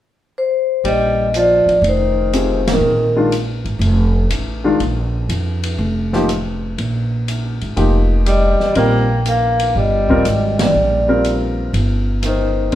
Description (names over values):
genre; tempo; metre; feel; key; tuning
modal jazz; 121 BPM; 4/4; swing 68% on 8ths; Bb mixolydian; A4 = 441 Hz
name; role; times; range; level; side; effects
vibraphone with medium mallets; melody; 0.4-3.3, 8.3-12.7 s; Bb4 to G5; -17 LUFS; left 1 dB; none
breathy alto saxophone; second line; 0.8-3.3, 8.3-12.7 s; Eb3 to Bb3; -21 LUFS; right 1 dB; none
upright bass; bass; 0.8-12.8 s; F1 to F2; -18 LUFS; equal; none
open jazz drum kit; drums; 0.8-12.8 s; hi-hat, kick drum, ride cymbal, rim click, snare drum; -25 LUFS; left 1 dB; none
warm upright piano; accompaniment; 2.3-12.8 s; Eb3 to Bb4; -18 LUFS; left 1 dB; none
room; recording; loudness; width
moderate large studio reverb, RT60 1.0 s; band playing live in one room; -14 LUFS; side -12 dB against mid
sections
0.8-12.8 A section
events
band accent 2.6, 10.5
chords
0.0 N.C.; 0.8 Bb7sus4; 8.8 Cm7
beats
0.35 | 0.84 1.34 1.83 2.33 | 2.82 3.31 3.81 4.30 | 4.80 5.29 5.79 6.28 | 6.78 7.28 7.77 8.27 | 8.76 9.26 9.75 10.25 | 10.74 11.24 11.73 12.23 | 12.72